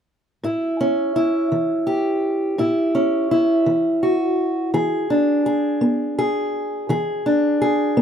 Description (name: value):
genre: blues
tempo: 56 BPM (dotted quarters)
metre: 12/8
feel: straight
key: unclear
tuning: A4 = 439 Hz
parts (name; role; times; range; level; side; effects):
- fingerpicked steel-string acoustic guitar; solo; 0.4-8.0 s; A2 to G#4; -18 LUFS; equal; none
room: light reverb, small room ambience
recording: rough home demo mix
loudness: -18 LUFS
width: side -8 dB against mid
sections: 0.4-8.0 A section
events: none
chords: 0.4 A7; 4.7 E7